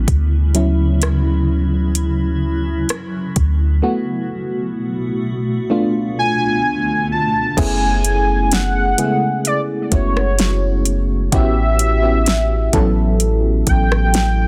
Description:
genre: contemporary R&B.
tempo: 64 BPM.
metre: 4/4.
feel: straight.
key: F# minor.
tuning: A4 = 440 Hz.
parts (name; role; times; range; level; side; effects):
mellow FM electric piano; accompaniment; 0.0-14.5 s; C#3 to A4; -23 LUFS; equal; chorus, tremolo.
granular cloud pad; sustained chords; 0.0-7.6 s; C#2 to F#4; -27 LUFS; equal; built-in reverb, sidechain pumping.
warm 808-style bass; bass; 0.0-14.5 s; F#1 to D2; -19 LUFS; equal; none.
smooth R&B drum kit; drums; 0.1-14.4 s; crash cymbal, hi-hat, kick drum, rim click, snare drum; -22 LUFS; equal; overdrive.
warm velvety synth lead; melody; 6.2-14.5 s; C#5 to A5; -22 LUFS; equal; chorus, tape echo.
room: little or no reverb.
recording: dense, heavily limited modern master.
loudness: -17 LUFS.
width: mono.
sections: 0.0-7.6 A section; 7.6-14.5 B section.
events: FM electric piano solo 0.0-7.6.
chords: 0.1 Dmaj9; 3.8 F#madd11/B; 5.7 C#7b9b13; 7.6 F#m11; 11.3 A13.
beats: | 0.08 1.01 1.95 2.89 | 3.83 4.76 5.70 6.64 | 7.58 8.51 9.45 10.39 | 11.33 12.26 13.20 14.14.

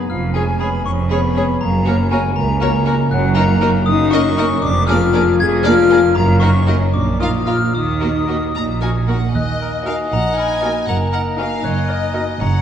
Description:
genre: cinematic.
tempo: 78 BPM (dotted quarters).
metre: 6/8.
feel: straight.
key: F# major, Eb minor from 3.1 s.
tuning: A4 = 440 Hz.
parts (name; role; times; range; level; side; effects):
glockenspiel with hard plastic mallets; melody; 0.0-12.6 s; G#5 to Ab6; -24 LUFS; left 2 dB; none.
silver concert flute; second line; 0.0-12.2 s; Eb5 to Ab6; -25 LUFS; left 2 dB; none.
mellow French horn section; sustained chords; 0.0-12.6 s; E#3 to Ab4; -20 LUFS; left 5 dB; none.
rich studio cello section; bass; 0.1-12.6 s; C#2 to Eb3; -21 LUFS; right 2 dB; none.
warm studio double bass section; bass; 0.1-12.6 s; E#1 to Eb2; -20 LUFS; right 2 dB; none.
mellow clarinet; second line; 0.3-12.6 s; C#4 to Eb5; -27 LUFS; left 1 dB; none.
warm studio violin section; second line; 0.3-12.3 s; F4 to Eb5; -30 LUFS; left 1 dB; none.
warm studio viola section; accompaniment; 0.3-12.3 s; G#3 to Eb4; -26 LUFS; right 2 dB; none.
warm studio violin section; melody; 0.4-12.6 s; C#5 to Bb5; -27 LUFS; left 4 dB; none.
warm oboe; second line; 0.4-12.2 s; G#4 to Bb4; -31 LUFS; right 1 dB; none.
room: wet scoring stage reverb, RT60 1.9 s.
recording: dark, warm production.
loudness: -14 LUFS.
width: side -9 dB against mid.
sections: 0.0-9.3 A section; 9.3-12.6 B section.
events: none.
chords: 0.1 C#/E#; 1.6 F#; 3.1 Ebm/Gb; 4.6 Bb7/F; 6.2 Ebm/Gb; 6.9 Bb5; 7.7 Ebm; 10.9 Ebm/Gb.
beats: | 0.09 0.86 | 1.61 2.36 | 3.11 3.87 | 4.63 5.40 | 6.16 6.94 | 7.74 8.55 | 9.35 10.12 | 10.88 11.64 | 12.41.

